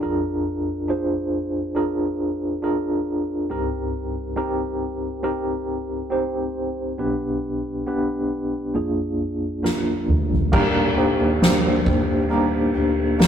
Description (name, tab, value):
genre	pop ballad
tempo	68 BPM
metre	4/4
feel	straight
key	Eb major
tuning	A4 = 440 Hz
part	tine electric piano	accompaniment	0.0-13.3 s	Bb1 to C5	-22 LUFS	equal	medium tremolo
part	soft-mallet drum kit	drums	9.6-13.3 s	crash cymbal, kick drum, ride cymbal, snare drum, toms	-21 LUFS	equal	none
part	fingerpicked steel-string acoustic guitar	arpeggios	10.5-13.3 s	Eb3 to G4	-26 LUFS	left 4 dB	none
part	vintage muted fingered electric bass	bass	10.5-13.3 s	D2 to Eb2	-28 LUFS	equal	none
part	impact	sound effects	10.7-13.3 s	none	-37 LUFS	left 1 dB	none
room	light reverb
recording	rough rehearsal-room recording, tube saturation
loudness	-20 LUFS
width	side -8 dB against mid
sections	0.0-10.5 A section; 10.5-13.3 B section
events	drum fill 9.6-10.5; impact 10.5-13.3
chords	0.0 Bb7; 3.5 Cm7; 7.0 G/B; 8.7 Bb7; 10.5 Ebmaj7